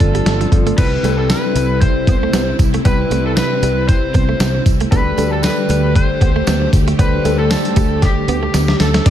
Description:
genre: 1980s-style pop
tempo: 116 BPM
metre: 4/4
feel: swing 55% on 16ths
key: unclear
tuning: A4 = 440 Hz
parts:
  - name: lead guitar through a small cranked amp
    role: melody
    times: 0.0-9.1 s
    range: G4 to C5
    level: -21 LUFS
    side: left 2 dB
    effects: overdrive
  - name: warm concert grand piano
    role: accompaniment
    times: 0.0-9.1 s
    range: F3 to C5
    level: -23 LUFS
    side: left 2 dB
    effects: none
  - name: string machine, violas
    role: sustained chords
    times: 0.0-9.1 s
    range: C3 to G4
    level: -22 LUFS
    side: equal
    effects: ensemble chorus
  - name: direct-recorded clean electric guitar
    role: riff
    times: 0.0-9.1 s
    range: F3 to D4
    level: -25 LUFS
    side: right 8 dB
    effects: analog chorus, digital delay
  - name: sustaining fretless electric bass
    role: bass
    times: 0.0-9.1 s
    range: G1 to D2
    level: -18 LUFS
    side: equal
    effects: none
  - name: dusty soul sampler-style drum kit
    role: drums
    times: 0.0-9.1 s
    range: crash cymbal, hi-hat, kick drum, snare drum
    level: -16 LUFS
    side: equal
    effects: overdrive, gated reverb
  - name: tambourine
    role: percussion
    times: 0.8-9.1 s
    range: none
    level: -35 LUFS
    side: right 8 dB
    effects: none
room: digital ambience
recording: none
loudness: -12 LUFS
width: side -10 dB against mid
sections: 0.8-9.1 A section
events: drum fill 8.0-9.1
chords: 0.0 F6/G; 0.8 Cmaj7; 4.9 Dsus4

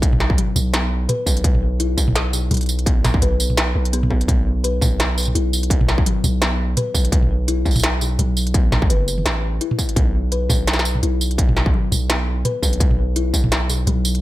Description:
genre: half-time drum and bass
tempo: 169 BPM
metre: 4/4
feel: swing 56% on 16ths, half-time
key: unclear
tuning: A4 = 441 Hz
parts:
  - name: long sustained 808-style bass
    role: bass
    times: 0.0-14.2 s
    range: F#1 to B1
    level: -20 LUFS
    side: equal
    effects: none
  - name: electronic kick drum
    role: drums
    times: 0.0-13.4 s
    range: none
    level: -19 LUFS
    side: equal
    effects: distortion
  - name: industrial drum kit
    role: drums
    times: 0.0-14.2 s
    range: hi-hat, snare drum, tambourine, toms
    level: -21 LUFS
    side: right 1 dB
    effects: none
  - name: kalimba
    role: arpeggios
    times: 0.2-14.2 s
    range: B2 to B4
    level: -26 LUFS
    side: left 5 dB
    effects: tape echo
room: digital ambience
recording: none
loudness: -16 LUFS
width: side -16 dB against mid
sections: 0.0-14.2 A section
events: none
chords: 0.0 B5

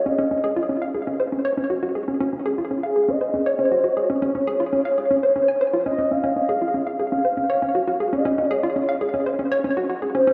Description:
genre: ambient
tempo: 119 BPM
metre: 4/4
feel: straight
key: Db major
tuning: A4 = 439 Hz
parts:
  - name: expressive synth lead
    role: melody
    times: 0.0-10.3 s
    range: Ab4 to F5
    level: -24 LUFS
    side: equal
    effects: chorus, tape echo
  - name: hollow square pluck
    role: riff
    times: 0.0-10.3 s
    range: Db4 to Ab5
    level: -25 LUFS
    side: equal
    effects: chorus, tape echo
room: wet lush hall reverb, RT60 2.7 s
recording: small room ambience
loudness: -22 LUFS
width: mono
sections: 0.0-6.1 A section; 6.1-10.3 B section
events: none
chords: 0.0 Db

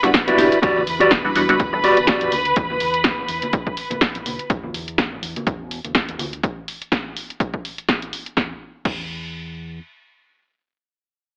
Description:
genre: filtered disco house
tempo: 124 BPM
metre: 4/4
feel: swing 56% on 16ths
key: E minor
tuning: A4 = 440 Hz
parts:
  - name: funky polysynth comp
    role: accompaniment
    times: 0.0-1.8 s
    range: G3 to A4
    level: -22 LUFS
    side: equal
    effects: chorus, phaser, sidechain pumping, low-pass filter
  - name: clear studio violin section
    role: sustained chords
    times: 0.0-4.5 s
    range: B4 to B5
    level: -25 LUFS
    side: equal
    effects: sidechain pumping, low-pass filter
  - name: mellow electric guitar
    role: riff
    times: 0.0-2.3 s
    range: E4 to D5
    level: -19 LUFS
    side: equal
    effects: vintage 12-bit sampler grit, sidechain pumping, low-pass filter
  - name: punchy analog drum machine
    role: drums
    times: 0.0-9.0 s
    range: crash cymbal, hi-hat, shaker, snare drum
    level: -25 LUFS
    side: equal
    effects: sidechain pumping on hats, sidechain pumping on perc, sidechain pumping on cymbals
  - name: congas and tambourine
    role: percussion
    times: 0.0-6.4 s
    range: none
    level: -36 LUFS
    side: equal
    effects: sidechain pumping on perc, low-pass filter on perc
  - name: electronic kick drum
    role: drums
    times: 0.1-9.0 s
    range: none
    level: -27 LUFS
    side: equal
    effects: none
  - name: fingered electric bass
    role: bass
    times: 0.4-9.8 s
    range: E1 to E2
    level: -38 LUFS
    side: equal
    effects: sidechain pumping, low-pass filter
room: moderate plate reverb, RT60 1.2 s, digital ambience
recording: AM radio sound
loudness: -20 LUFS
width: mono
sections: 0.6-8.4 A section; 8.4-11.4 B section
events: none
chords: 0.0 Em9; 4.5 N.C.

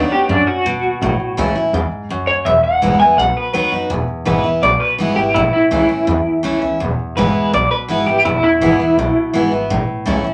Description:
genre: rockabilly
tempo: 166 BPM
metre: 4/4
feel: straight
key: E major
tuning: A4 = 437 Hz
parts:
  - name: electric guitar through a small old amp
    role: melody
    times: 0.0-9.5 s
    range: D4 to G#5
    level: -17 LUFS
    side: equal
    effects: tremolo
  - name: picked steel-string acoustic guitar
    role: accompaniment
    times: 0.0-10.3 s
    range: E2 to F#4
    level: -21 LUFS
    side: equal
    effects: none
  - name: upright bass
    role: bass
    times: 0.0-10.3 s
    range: E1 to F#2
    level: -24 LUFS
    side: equal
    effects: none
room: wet club reverb, RT60 0.6 s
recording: none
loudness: -16 LUFS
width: mono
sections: 0.0-3.9 A section; 3.9-10.3 B section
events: clean electric guitar solo 0.0-3.9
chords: 0.0 B; 1.0 A; 2.5 E; 3.2 B; 3.9 E; 5.4 A; 6.8 E; 9.7 A

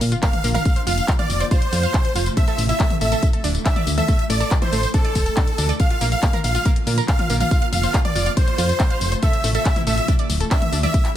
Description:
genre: uplifting trance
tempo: 140 BPM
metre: 4/4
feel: straight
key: D minor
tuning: A4 = 441 Hz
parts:
  - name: shimmering ambient pad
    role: sustained chords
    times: 0.0-11.2 s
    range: C3 to F4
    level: -30 LUFS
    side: left 1 dB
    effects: chorus, built-in reverb, sidechain pumping
  - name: solid FM bass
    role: bass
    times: 0.0-10.9 s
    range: D1 to Bb2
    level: -21 LUFS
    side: equal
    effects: sidechain pumping
  - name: house drum kit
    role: drums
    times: 0.0-11.1 s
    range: handclaps, hi-hat, tambourine, toms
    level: -26 LUFS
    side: left 2 dB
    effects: none
  - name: sub drop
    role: sound effects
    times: 0.0-0.7 s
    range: none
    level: -39 LUFS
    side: equal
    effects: none
  - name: analog pluck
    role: arpeggios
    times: 0.1-11.1 s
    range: A3 to F5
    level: -29 LUFS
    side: right 4 dB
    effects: chorus, sidechain pumping, digital delay
  - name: big supersaw lead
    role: melody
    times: 0.2-11.1 s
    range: A4 to F5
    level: -25 LUFS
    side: right 1 dB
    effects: sidechain pumping, digital delay
  - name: bright baby grand piano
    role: second line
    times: 0.2-11.1 s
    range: A4 to F5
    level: -32 LUFS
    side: right 1 dB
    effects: none
  - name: electronic kick drum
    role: drums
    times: 0.2-11.0 s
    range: none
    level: -19 LUFS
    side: equal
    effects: none
room: little or no reverb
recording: none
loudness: -17 LUFS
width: side -12 dB against mid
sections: 0.0-11.2 A section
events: impact 0.0-0.7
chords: 0.0 Bb; 0.7 F; 2.4 Am; 3.2 Dm; 4.1 Am; 4.9 Dm; 5.8 Bb; 7.5 F; 9.2 Am; 10.1 Dm

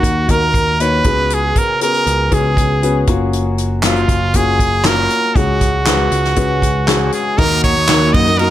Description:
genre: piano-driven pop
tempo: 118 BPM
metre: 4/4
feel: straight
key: unclear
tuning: A4 = 440 Hz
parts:
  - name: brilliant trumpet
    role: melody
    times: 0.0-8.5 s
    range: E#4 to D#5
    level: -16 LUFS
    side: right 2 dB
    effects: none
  - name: dark upright piano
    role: accompaniment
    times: 0.0-8.5 s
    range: C#3 to C#5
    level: -19 LUFS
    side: left 4 dB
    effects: none
  - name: picked electric bass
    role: bass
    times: 0.0-8.5 s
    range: F#1 to F#2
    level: -18 LUFS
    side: equal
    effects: none
  - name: unplugged drum kit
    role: drums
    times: 0.0-8.5 s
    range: crash cymbal, handclaps, hi-hat, kick drum, ride cymbal, snare drum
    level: -17 LUFS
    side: equal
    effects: none
  - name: dark studio string section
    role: sustained chords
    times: 7.4-8.5 s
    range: A#4 to D#6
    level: -27 LUFS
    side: right 1 dB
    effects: none
  - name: picked steel-string acoustic guitar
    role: riff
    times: 7.4-8.5 s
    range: D#3 to A#4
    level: -21 LUFS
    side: right 6 dB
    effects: none
room: light reverb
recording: none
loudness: -12 LUFS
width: side -12 dB against mid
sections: 0.0-7.4 A section; 7.4-8.5 B section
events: none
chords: 0.0 D#m; 1.0 C#7sus4; 3.1 F#maj7; 5.4 C#sus4; 7.4 D#m

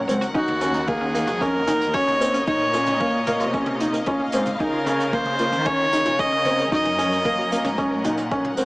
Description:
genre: piano and strings electronica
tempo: 113 BPM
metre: 4/4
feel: straight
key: Eb dorian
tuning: A4 = 440 Hz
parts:
  - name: warm chamber string section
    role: sustained chords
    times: 0.0-8.7 s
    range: Bb2 to Gb5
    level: -29 LUFS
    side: equal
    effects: sidechain pumping
  - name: analog pluck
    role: arpeggios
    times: 0.1-8.7 s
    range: Db4 to Db5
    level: -32 LUFS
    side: equal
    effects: none
  - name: dark upright piano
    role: riff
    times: 0.1-8.7 s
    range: Bb3 to Eb4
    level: -24 LUFS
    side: equal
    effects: none
  - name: dark chamber cello section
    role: bass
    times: 0.1-8.7 s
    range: Db2 to Eb3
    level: -29 LUFS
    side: equal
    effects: sidechain pumping
  - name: jazz brush drum kit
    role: drums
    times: 0.1-8.7 s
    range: hi-hat, toms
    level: -36 LUFS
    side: equal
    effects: none
  - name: rich viola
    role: melody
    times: 0.4-7.7 s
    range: Gb4 to Eb5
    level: -23 LUFS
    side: equal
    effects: none
  - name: electronic kick drum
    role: drums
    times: 0.4-8.4 s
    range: none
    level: -32 LUFS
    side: equal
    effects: none
room: light reverb, small room reverb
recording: small speaker sound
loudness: -19 LUFS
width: side -24 dB against mid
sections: 0.0-8.7 A section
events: none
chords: 0.4 Ebm7; 2.5 Bbm; 4.6 Db6; 6.7 Gb

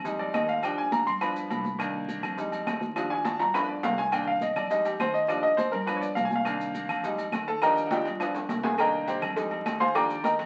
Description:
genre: latin, salsa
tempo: 206 BPM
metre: 4/4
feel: straight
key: C minor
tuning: A4 = 440 Hz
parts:
  - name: bright concert grand piano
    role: accompaniment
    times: 0.0-10.3 s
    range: Eb3 to D6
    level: -29 LUFS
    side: equal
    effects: none
  - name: upright bass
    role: bass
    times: 0.0-10.5 s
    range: C2 to G2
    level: -42 LUFS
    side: equal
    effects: none
  - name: congas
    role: percussion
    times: 0.0-10.5 s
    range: none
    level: -39 LUFS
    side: equal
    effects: none
  - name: maracas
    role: percussion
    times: 0.1-10.5 s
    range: none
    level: -53 LUFS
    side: equal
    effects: none
  - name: agogo bells and timbales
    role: percussion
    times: 0.2-10.5 s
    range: none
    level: -36 LUFS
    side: equal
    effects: none
  - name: claves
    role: percussion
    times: 0.3-10.1 s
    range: none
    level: -43 LUFS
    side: equal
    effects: none
  - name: cowbell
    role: percussion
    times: 8.8-10.5 s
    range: none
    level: -38 LUFS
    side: equal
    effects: none
room: wet large studio reverb, RT60 0.9 s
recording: very old 78 rpm record, vinyl crackle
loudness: -28 LUFS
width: mono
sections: 0.0-10.5 A section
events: grand piano solo 0.0-10.5; drum fill 3.0-4.1, 7.9-8.8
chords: 0.1 Fm7; 0.6 Ebmaj7; 1.2 G7; 1.8 Cm7; 2.4 Fm7; 3.0 Ebmaj7; 3.5 G7; 4.1 Cm7; 4.7 Fm7; 5.3 Ebmaj7; 5.9 G7; 6.5 Cm7; 7.0 Fm7; 7.6 Ebmaj7; 8.2 G7; 8.8 Cm7; 9.4 Fm7; 10.0 Ebmaj7

